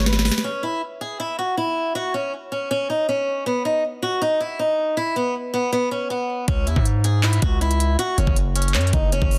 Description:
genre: hip hop, trap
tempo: 159 BPM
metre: 4/4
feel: half-time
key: unclear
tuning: A4 = 439 Hz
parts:
  - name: picked swing-style acoustic guitar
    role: melody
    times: 0.0-9.4 s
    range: B3 to B4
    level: -25 LUFS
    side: equal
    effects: delay
  - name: distorted 808-style bass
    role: bass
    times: 0.0-0.3, 6.5-9.4 s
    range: F#1 to G#2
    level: -22 LUFS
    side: equal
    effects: distortion
  - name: trap drum kit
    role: drums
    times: 0.0-0.5, 6.5-9.4 s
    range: handclaps, hi-hat, kick drum, snare drum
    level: -24 LUFS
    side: equal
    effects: overdrive
room: light reverb, digital ambience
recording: dense, heavily limited modern master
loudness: -22 LUFS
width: mono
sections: 0.4-6.5 A section; 6.5-9.4 B section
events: drum fill 0.0-0.4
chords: 0.4 N.C.; 6.5 C#m; 8.0 F#5

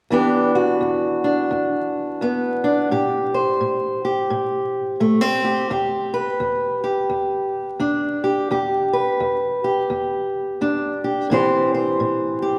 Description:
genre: blues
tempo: 86 BPM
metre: 4/4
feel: swing 62% on 8ths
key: E minor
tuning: A4 = 439 Hz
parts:
  - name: fingerpicked steel-string acoustic guitar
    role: solo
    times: 0.1-12.6 s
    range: E2 to C5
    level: -21 LUFS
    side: equal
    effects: none
room: wet concert hall reverb, RT60 2.5 s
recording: recorded in a church or concert hall, vinyl crackle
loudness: -21 LUFS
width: mono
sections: 0.1-12.6 A section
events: none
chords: 0.1 Em7; 2.9 Am7; 5.7 Em7; 11.3 Am7

